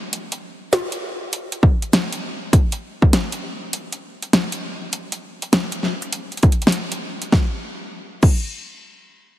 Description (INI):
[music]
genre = glitch hop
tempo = 100 BPM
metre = 4/4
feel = swing 64% on 16ths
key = none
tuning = none
[part]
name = pop drum kit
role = drums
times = 0.1-8.4 s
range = crash cymbal, hi-hat, snare drum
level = -21 LUFS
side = equal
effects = overdrive
[part]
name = electronic kick drum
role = drums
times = 1.6-8.4 s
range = none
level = -14 LUFS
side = equal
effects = overdrive
[sound]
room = light reverb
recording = heavily compressed radio sound, multiband compression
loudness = -18 LUFS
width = side -14 dB against mid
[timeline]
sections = 0.0-7.3 A section; 7.3-9.4 B section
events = none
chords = none